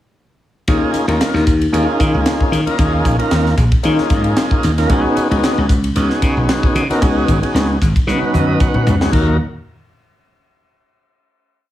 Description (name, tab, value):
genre	electric jazz fusion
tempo	114 BPM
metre	4/4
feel	swing 55% on 16ths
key	Eb minor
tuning	A4 = 440 Hz
part	tonewheel organ	accompaniment	0.7-9.4 s	Gb3 to Gb5	-17 LUFS	equal	slow rotary speaker, overdrive
part	glassy slap bass	bass	0.7-9.4 s	Ab1 to Eb3	-16 LUFS	equal	none
part	crisp fusion drum kit	drums	0.7-9.3 s	crash cymbal, hi-hat, kick drum, ride cymbal, snare drum, toms	-18 LUFS	equal	none
room	light reverb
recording	studio reverb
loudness	-13 LUFS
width	side -13 dB against mid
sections	0.7-9.1 groove; 9.1-11.2 final chord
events	drum fill 8.1-9.1; tonewheel organ fill 8.1-9.1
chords	0.7 Eb9sus4; 4.9 Db9sus4; 9.1 Ebm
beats	| 0.68 1.21 1.73 2.26 | 2.79 3.31 3.84 4.37 | 4.90 5.43 5.96 6.49 | 7.01 7.54 8.07 8.60 | 9.13